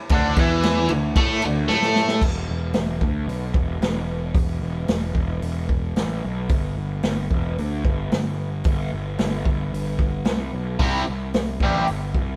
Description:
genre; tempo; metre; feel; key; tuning
garage rock duo or trio; 112 BPM; 4/4; straight; E minor; A4 = 442 Hz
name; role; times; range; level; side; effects
biting overdriven guitar; riff; 0.1-2.2, 10.8-11.9 s; C3 to A4; -24 LUFS; equal; phaser
fuzz picked electric bass; bass; 0.1-12.4 s; E1 to A2; -27 LUFS; equal; overdrive
vintage drum kit; drums; 0.1-12.3 s; crash cymbal, hi-hat, kick drum, ride cymbal, snare drum; -25 LUFS; equal; none
room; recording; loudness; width
light reverb; band playing live in one room; -23 LUFS; mono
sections
0.0-2.2 A section; 2.2-12.4 B section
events
drum fill 1.7-2.2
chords
0.0 D5; 2.2 E5; 6.5 N.C.; 10.8 C

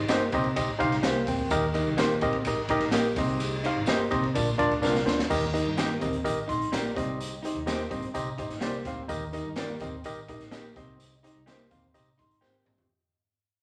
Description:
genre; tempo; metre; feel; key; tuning
uptempo 1960s-style soul; 126 BPM; 4/4; straight; unclear; A4 = 441 Hz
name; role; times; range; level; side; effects
tine electric piano; accompaniment; 0.0-13.1 s; Bb2 to C6; -31 LUFS; equal; none
electric guitar through a small old amp; riff; 0.0-12.8 s; Bb3 to Eb4; -35 LUFS; equal; none
vintage muted fingered electric bass; bass; 0.0-12.9 s; G1 to Eb3; -39 LUFS; equal; none
electric guitar through a small old amp; stabs; 0.1-12.5 s; Bb3 to C5; -36 LUFS; equal; spring reverb
raw garage drum kit; drums; 0.1-12.9 s; crash cymbal, hi-hat, kick drum, ride cymbal, snare drum, toms; -35 LUFS; equal; none
tambourine; percussion; 0.1-12.8 s; none; -47 LUFS; equal; none
room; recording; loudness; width
wet large studio reverb, RT60 1.1 s; none; -28 LUFS; mono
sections
0.0-5.3 A section; 5.3-12.9 B section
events
drum fill 4.8-5.3, 12.4-12.9; fade-out 5.3-12.9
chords
0.0 Cm; 1.5 Eb; 3.2 Cm; 4.3 Bb; 5.3 Eb; 7.0 Cm; 9.1 Eb; 10.8 Cm

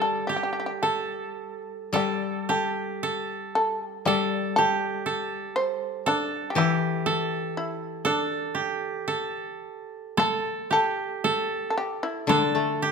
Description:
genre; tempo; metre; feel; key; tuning
japanese traditional, Japanese chamber music; 53-62 BPM; 2/4; rubato; unclear; A4 = 440 Hz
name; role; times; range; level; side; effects
shamisen; melody; 0.0-12.9 s; D4 to C5; -27 LUFS; left 1 dB; none
koto; second line; 0.0-12.9 s; G4 to A4; -27 LUFS; right 4 dB; none
koto; accompaniment; 0.0-12.9 s; D3 to A3; -29 LUFS; left 8 dB; none
taiko ensemble; percussion; 10.2-12.5 s; none; -30 LUFS; left 2 dB; none
room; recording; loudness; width
moderate recital hall reverb, RT60 1.5 s; none; -24 LUFS; side -5 dB against mid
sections
0.0-10.2 A section; 10.2-12.9 B section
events
none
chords
none

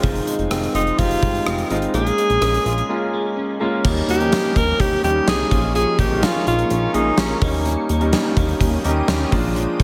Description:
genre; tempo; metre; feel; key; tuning
1980s-style pop; 126 BPM; 4/4; straight; unclear; A4 = 437 Hz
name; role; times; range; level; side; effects
clear concert grand piano; accompaniment; 0.0-9.8 s; F3 to G4; -26 LUFS; equal; none
electric guitar at the edge of break-up; riff; 0.0-9.8 s; Eb3 to Ab4; -29 LUFS; equal; analog chorus, digital delay
chorused synth bass; bass; 0.0-9.8 s; F1 to Eb2; -26 LUFS; equal; none
gated 80s drum kit; drums; 0.0-9.8 s; crash cymbal, hi-hat, kick drum, rim click, snare drum; -24 LUFS; equal; gated reverb
bright alto saxophone; melody; 0.8-7.5 s; Db4 to Bb4; -23 LUFS; equal; none
shimmering ambient pad; sustained chords; 4.9-9.8 s; G4 to Eb6; -34 LUFS; equal; chorus, built-in reverb
room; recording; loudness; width
moderate lush hall reverb, RT60 1.6 s, small room reverb; none; -19 LUFS; mono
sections
0.0-3.8 A section; 3.8-9.8 B section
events
break 2.9-3.8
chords
0.0 Fm7; 1.9 Bbm7; 3.8 Eb7; 5.5 Bbm7; 7.4 Eb7; 9.3 Bb7

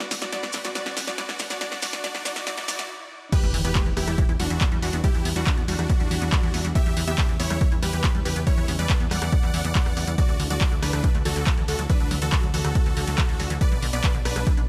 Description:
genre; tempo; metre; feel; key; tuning
uplifting trance; 140 BPM; 4/4; straight; E dorian; A4 = 438 Hz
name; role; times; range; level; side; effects
supersaw chords; melody; 0.0-14.5 s; D4 to F#5; -34 LUFS; equal; sidechain pumping, digital delay
unison pluck; second line; 0.0-14.5 s; F#4 to F#5; -40 LUFS; equal; none
analog string pad; sustained chords; 0.0-14.7 s; B2 to F#5; -41 LUFS; equal; none
liquid acid bass; arpeggios; 0.0-14.6 s; D3 to E4; -38 LUFS; equal; chorus, cassette tape, sidechain pumping, digital delay
punchy analog drum machine; drums; 0.0-14.7 s; crash cymbal, handclaps, hi-hat, rim click, snare drum; -32 LUFS; equal; none
riser and impact; sound effects; 0.1-5.0 s; none; -38 LUFS; equal; none
maracas; percussion; 0.1-2.9 s; none; -37 LUFS; equal; none
electronic kick drum; drums; 3.3-14.6 s; none; -25 LUFS; equal; none
plucky analog bass; bass; 3.4-14.7 s; B1 to E2; -29 LUFS; equal; sidechain pumping
room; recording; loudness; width
little or no reverb; high-pass filter; -24 LUFS; mono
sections
0.0-3.3 A section; 3.3-14.7 B section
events
build-up 0.0-3.3; drum fill 0.0-2.9; stop 2.9-3.3; drop 3.3-14.7; impact 3.3-5.0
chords
0.0 Bm; 3.3 Em; 10.2 Dadd9; 13.6 Bm

